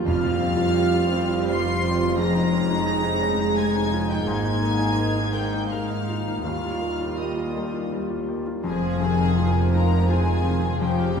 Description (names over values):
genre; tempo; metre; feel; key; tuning
cinematic, emotional film score for orchestra; 84 BPM; 3/4; rubato; unclear; A4 = 441 Hz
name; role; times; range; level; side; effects
felt-muted upright piano; accompaniment; 0.0-11.2 s; Eb2 to Ab4; -27 LUFS; left 2 dB; none
warm studio viola section; accompaniment; 0.0-11.2 s; Db3 to F4; -29 LUFS; right 2 dB; none
dark French horn section; sustained chords; 0.0-8.7 s; G3 to F4; -29 LUFS; right 2 dB; none
concert harp; arpeggios; 0.0-11.2 s; F2 to F5; -30 LUFS; left 4 dB; none
rich symphonic cello section; bass; 0.0-11.2 s; Eb2 to Ab2; -30 LUFS; right 1 dB; none
rich symphonic double bass section; bass; 0.0-11.2 s; F1 to Eb2; -28 LUFS; right 2 dB; none
warm symphonic violin section; melody; 0.1-11.2 s; G5 to C7; -33 LUFS; left 3 dB; none
warm symphonic violin section; second line; 0.1-11.2 s; G4 to C6; -31 LUFS; left 3 dB; none
timpani; percussion; 0.1-1.1 s; F2; -30 LUFS; right 1 dB; none
room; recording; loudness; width
wet concert hall reverb, RT60 2.4 s; heard from further back in the room; -20 LUFS; side -6 dB against mid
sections
0.0-8.7 A section; 8.7-11.2 B section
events
none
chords
0.1 Fsus2; 2.2 Dbadd9/F; 4.3 Absus2; 6.4 Ebadd9; 8.7 Fm7